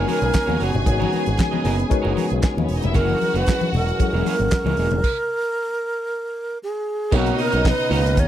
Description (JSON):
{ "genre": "disco", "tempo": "115 BPM", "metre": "4/4", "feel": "straight", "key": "unclear", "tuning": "A4 = 441 Hz", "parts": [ { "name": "breathy bright wooden-headed alto flute", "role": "melody", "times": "0.0-8.3 s", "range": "F#4 to C#5", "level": "-24 LUFS", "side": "right 2 dB", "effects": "none" }, { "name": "clear studio string section", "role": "second line", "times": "0.0-8.3 s", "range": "G#3 to G#5", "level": "-28 LUFS", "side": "left 1 dB", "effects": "none" }, { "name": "electric guitar at the edge of break-up", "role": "accompaniment", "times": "0.0-8.2 s", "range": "A#3 to D#5", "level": "-29 LUFS", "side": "right 11 dB", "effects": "none" }, { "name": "tine electric piano", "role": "accompaniment", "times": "0.0-8.3 s", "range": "B2 to C#5", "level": "-26 LUFS", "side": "left 7 dB", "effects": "medium stereo tremolo" }, { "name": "tonewheel organ", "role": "sustained chords", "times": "0.0-8.3 s", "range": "C#3 to A#4", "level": "-30 LUFS", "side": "right 2 dB", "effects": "overdrive, chorus vibrato, slow rotary speaker" }, { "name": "picked electric bass with an envelope filter", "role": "bass", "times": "0.0-8.3 s", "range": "E1 to D#2", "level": "-22 LUFS", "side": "right 1 dB", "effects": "none" }, { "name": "damped 70s drum kit", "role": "drums", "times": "0.1-8.3 s", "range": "crash cymbal, handclaps, hi-hat, kick drum, snare drum", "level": "-22 LUFS", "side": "right 1 dB", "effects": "none" }, { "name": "congas", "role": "percussion", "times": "0.1-5.0 s", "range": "none", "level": "-28 LUFS", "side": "left 5 dB", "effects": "none" } ], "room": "little or no reverb", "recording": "dry, close 1970s-style studio recording", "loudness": "-18 LUFS", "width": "side -11 dB against mid", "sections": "0.0-7.1 A section; 7.1-8.3 B section", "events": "stop 5.0-7.1", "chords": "0.0 G#m11; 3.0 F#9; 7.1 Bmaj9", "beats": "0.34 | 0.86 1.38 1.91 2.43 | 2.95 3.47 4.00 4.52 | 5.04 5.56 6.09 6.61 | 7.13 7.65 8.17" }